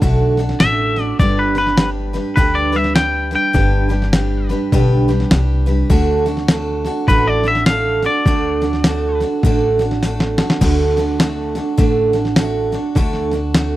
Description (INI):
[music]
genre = honky-tonk and classic country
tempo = 102 BPM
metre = 4/4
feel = swing 61% on 8ths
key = unclear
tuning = A4 = 441 Hz
[part]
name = picked steel-string acoustic guitar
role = accompaniment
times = 0.0-13.8 s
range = G2 to B4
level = -19 LUFS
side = right 2 dB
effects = none
[part]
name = upright bass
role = bass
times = 0.0-13.8 s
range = G1 to D2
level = -19 LUFS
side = equal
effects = none
[part]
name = dusty soul sampler-style drum kit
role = drums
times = 0.0-13.7 s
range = crash cymbal, hi-hat, kick drum, snare drum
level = -17 LUFS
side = equal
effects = overdrive
[part]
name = twangy electric guitar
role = melody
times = 0.6-9.2 s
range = B4 to G5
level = -18 LUFS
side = left 2 dB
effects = none
[sound]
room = little or no reverb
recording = dry, close 1970s-style studio recording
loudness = -14 LUFS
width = side -15 dB against mid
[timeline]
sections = 0.0-10.6 A section; 10.6-13.8 B section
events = clean electric guitar solo 0.0-10.6; drum fill 10.0-10.6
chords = 0.0 D; 1.2 G; 5.9 D